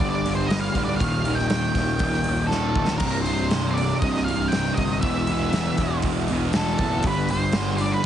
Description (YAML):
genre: quiet-loud alternative rock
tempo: 120 BPM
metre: 4/4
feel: straight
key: unclear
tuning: A4 = 440 Hz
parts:
  - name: octave-fuzz lead guitar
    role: melody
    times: 0.0-8.1 s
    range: A4 to G5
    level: -28 LUFS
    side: equal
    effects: distortion
  - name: cranked stack guitar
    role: riff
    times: 0.0-8.0 s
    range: C2 to G3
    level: -28 LUFS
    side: right 11 dB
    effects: overdrive
  - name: thick fuzz guitar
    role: riff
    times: 0.0-8.0 s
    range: C2 to G3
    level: -27 LUFS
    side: left 7 dB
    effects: distortion
  - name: fuzz picked electric bass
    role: bass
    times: 0.0-7.9 s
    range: C1 to G1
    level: -27 LUFS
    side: equal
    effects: overdrive
  - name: huge arena drum kit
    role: drums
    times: 0.0-7.9 s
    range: crash cymbal, hi-hat, kick drum, snare drum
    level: -27 LUFS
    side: equal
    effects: none
room: light reverb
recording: heavily compressed radio sound, nothing above 10.4 kHz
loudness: -20 LUFS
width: side -10 dB against mid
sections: 0.0-8.1 A section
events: drum fill 2.5-3.0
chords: 0.0 G5; 1.0 Eb; 3.0 C5; 5.0 E5; 7.0 G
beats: 0.00 0.51 | 1.01 1.51 2.01 2.52 | 3.02 3.52 4.02 4.52 | 5.03 5.53 6.03 6.53 | 7.03 7.53 8.04